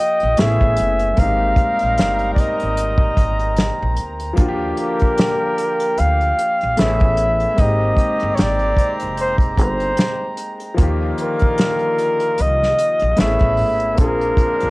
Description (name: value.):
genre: R&B, neo-soul.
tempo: 75 BPM.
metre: 4/4.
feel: swing 56% on 16ths.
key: unclear.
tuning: A4 = 440 Hz.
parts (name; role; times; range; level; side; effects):
warm flugelhorn; melody; 0.0-14.7 s; Bb4 to F5; -18 LUFS; equal; cassette tape.
clear grand piano; accompaniment; 0.0-14.7 s; Eb3 to G#4; -25 LUFS; left 2 dB; none.
mellow brass ensemble; sustained chords; 0.0-14.7 s; Ab3 to C6; -28 LUFS; right 1 dB; none.
upright bass; bass; 0.2-14.7 s; F1 to Eb2; -22 LUFS; equal; tube saturation.
unplugged drum kit; drums; 0.2-14.7 s; hi-hat, kick drum, snare drum; -18 LUFS; equal; none.
warm horn section; stabs; 0.4-14.7 s; Ab2 to Bb4; -29 LUFS; right 1 dB; none.
room: studio reverb.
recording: home recording on cassette.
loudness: -15 LUFS.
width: side -22 dB against mid.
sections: 0.0-14.7 A section.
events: none.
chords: 0.4 Amaj9; 1.2 Abmaj9; 4.4 Ebmaj9; 6.8 Amaj9; 7.6 Abmaj9; 10.8 Ebmaj9; 13.2 Amaj9; 14.0 Bb9.